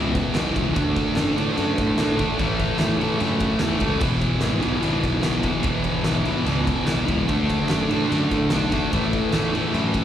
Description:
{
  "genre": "garage rock duo or trio",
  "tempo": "147 BPM",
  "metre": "4/4",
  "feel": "straight",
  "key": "unclear",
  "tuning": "A4 = 440 Hz",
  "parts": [
    { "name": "thick fuzz guitar", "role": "riff", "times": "0.0-10.0 s", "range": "E2 to D4", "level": "-22 LUFS", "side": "equal", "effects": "distortion" },
    { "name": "fuzz picked electric bass", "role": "bass", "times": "0.0-10.0 s", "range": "E1 to A2", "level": "-26 LUFS", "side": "equal", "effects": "overdrive" },
    { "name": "oversized low-tuned drum kit", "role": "drums", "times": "0.2-10.0 s", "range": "crash cymbal, kick drum, ride cymbal, snare drum", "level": "-26 LUFS", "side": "equal", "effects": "none" },
    { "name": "group handclap", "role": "percussion", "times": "0.3-9.4 s", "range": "none", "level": "-38 LUFS", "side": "right 2 dB", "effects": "none" }
  ],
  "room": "studio reverb",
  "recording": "live gig heard through the venue's PA, club reverb",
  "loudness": "-19 LUFS",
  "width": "side -10 dB against mid",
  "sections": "0.0-10.0 A section",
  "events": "none",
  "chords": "0.0 E5; 0.8 D; 2.4 A5; 4.0 E5; 7.3 D; 8.9 A5"
}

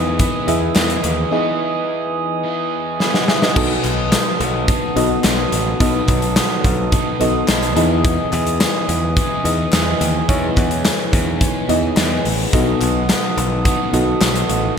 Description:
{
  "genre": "1980s-style pop",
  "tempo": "107 BPM",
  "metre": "4/4",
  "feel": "straight",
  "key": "B mixolydian",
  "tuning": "A4 = 440 Hz",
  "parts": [
    { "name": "mellow FM electric piano", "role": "accompaniment", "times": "0.0-14.8 s", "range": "B2 to B5", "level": "-21 LUFS", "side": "equal", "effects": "chorus, phaser" },
    { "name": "overdriven semi-hollow guitar", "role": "accompaniment", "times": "0.0-14.8 s", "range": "B2 to E4", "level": "-27 LUFS", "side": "left 1 dB", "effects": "lush chorus" },
    { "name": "glass harmonica", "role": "sustained chords", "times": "0.0-14.8 s", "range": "B4 to D#6", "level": "-23 LUFS", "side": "right 1 dB", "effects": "none" },
    { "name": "modern bright picked electric bass", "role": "bass", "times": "0.0-14.7 s", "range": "A1 to E2", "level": "-22 LUFS", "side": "equal", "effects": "none" },
    { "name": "big rock drum kit", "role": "drums", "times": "0.2-14.6 s", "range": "crash cymbal, hi-hat, kick drum, snare drum, tambourine", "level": "-18 LUFS", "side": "equal", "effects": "gated reverb" },
    { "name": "group handclap", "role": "percussion", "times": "0.8-14.3 s", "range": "none", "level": "-34 LUFS", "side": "left 3 dB", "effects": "none" }
  ],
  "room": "moderate lush hall reverb, RT60 2.6 s",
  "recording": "bright 1980s-style digital production",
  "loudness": "-15 LUFS",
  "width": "side -7 dB against mid",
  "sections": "0.0-3.6 A section; 3.6-14.8 A section",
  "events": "drum fill 3.0-3.6",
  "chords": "0.0 Emaj7; 3.6 B7; 7.8 Emaj7; 12.5 B7"
}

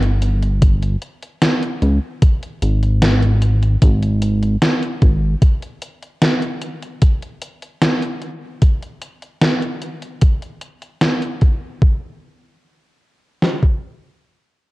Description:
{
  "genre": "vaporwave",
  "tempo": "75 BPM",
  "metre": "4/4",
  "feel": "straight",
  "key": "unclear",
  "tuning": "A4 = 440 Hz",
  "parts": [
    { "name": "chorused synth bass", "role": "bass", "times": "0.0-5.4 s", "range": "G1 to Db2", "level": "-15 LUFS", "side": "equal", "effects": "none" },
    { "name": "gated 80s digital drum machine", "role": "drums", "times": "0.0-11.6 s", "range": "hi-hat, snare drum", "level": "-19 LUFS", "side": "equal", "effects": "gated reverb, gated reverb snare, overdrive" },
    { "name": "gated 80s digital drum machine", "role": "drums", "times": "0.6-13.8 s", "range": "kick drum, snare drum", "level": "-12 LUFS", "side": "equal", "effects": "gated reverb, gated reverb snare, overdrive" }
  ],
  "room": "light reverb",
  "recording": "dark, warm production, cassette tape",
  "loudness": "-15 LUFS",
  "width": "side -20 dB against mid",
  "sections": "0.0-11.8 A section; 11.8-14.7 B section",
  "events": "none",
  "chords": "none"
}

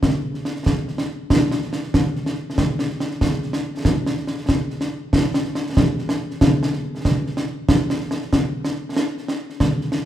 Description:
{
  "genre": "scottish traditional",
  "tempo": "94 BPM (dotted quarters)",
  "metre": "6/8",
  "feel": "straight",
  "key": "none",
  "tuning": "none",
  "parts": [
    { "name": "concert snare drum and concert bass drum", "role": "drums", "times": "0.0-10.0 s", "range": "none", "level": "-19 LUFS", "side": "equal", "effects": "none" }
  ],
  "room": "light reverb",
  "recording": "minimal, uncompressed stereo recording",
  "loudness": "-19 LUFS",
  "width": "side -12 dB against mid",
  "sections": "0.0-8.3 A section; 8.3-10.1 B section",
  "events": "none",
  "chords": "none"
}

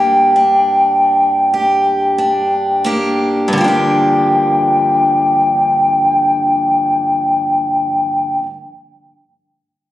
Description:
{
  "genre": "celtic folk, Celtic slow air",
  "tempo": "43-55 BPM",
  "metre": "4/4",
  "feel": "rubato",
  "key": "G minor",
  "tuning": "A4 = 441 Hz",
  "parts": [
    { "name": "mellow baroque flute", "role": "melody", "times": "0.0-8.4 s", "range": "G5", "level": "-12 LUFS", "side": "left 1 dB", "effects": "none" },
    { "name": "picked steel-string acoustic guitar", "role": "accompaniment", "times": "0.0-8.5 s", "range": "G2 to G4", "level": "-18 LUFS", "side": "equal", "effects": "none" }
  ],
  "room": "moderate recital hall reverb, RT60 1.5 s",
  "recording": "recorded on a phone in the room, club reverb, compression",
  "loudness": "-11 LUFS",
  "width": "side -14 dB against mid",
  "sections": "0.0-3.6 A section; 3.6-8.8 B section",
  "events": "slowing down 0.0-3.6",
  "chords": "0.0 Gm; 3.6 Gm7"
}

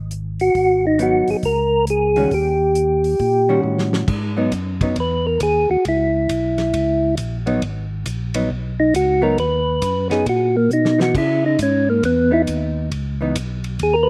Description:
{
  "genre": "soul jazz organ trio",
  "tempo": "136 BPM",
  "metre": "4/4",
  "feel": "swing 65% on 8ths",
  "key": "G# minor",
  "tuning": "A4 = 440 Hz",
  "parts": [
    { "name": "tonewheel organ", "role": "bass", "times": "0.0-14.1 s", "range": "G#1 to C#3", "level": "-26 LUFS", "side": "equal", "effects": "overdrive, chorus vibrato" },
    { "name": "warm soul drum kit", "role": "drums", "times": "0.1-13.9 s", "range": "crash cymbal, hi-hat, kick drum, ride cymbal, snare drum", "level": "-30 LUFS", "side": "equal", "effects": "none" },
    { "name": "percussive tonewheel organ", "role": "melody", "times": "0.4-14.1 s", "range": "A#3 to B4", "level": "-19 LUFS", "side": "equal", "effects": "slow rotary speaker, slapback echo" },
    { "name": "vintage hollow-body jazz guitar", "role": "accompaniment", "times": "1.0-13.3 s", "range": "D#3 to F#4", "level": "-25 LUFS", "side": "equal", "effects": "slapback echo" }
  ],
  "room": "little or no reverb",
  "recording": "recorded outdoors, with no room sound",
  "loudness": "-19 LUFS",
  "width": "mono",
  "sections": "0.0-4.1 A section; 4.1-14.1 B section",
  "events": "drum fill 3.6-4.1, 10.7-11.1; tonewheel organ solo 4.1-14.1",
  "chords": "0.0 N.C.; 0.5 G#m7; 1.4 C#sus2; 2.3 D#7#9; 4.1 G#m7; 5.8 C#m7; 7.6 G#m7; 11.1 C#m9"
}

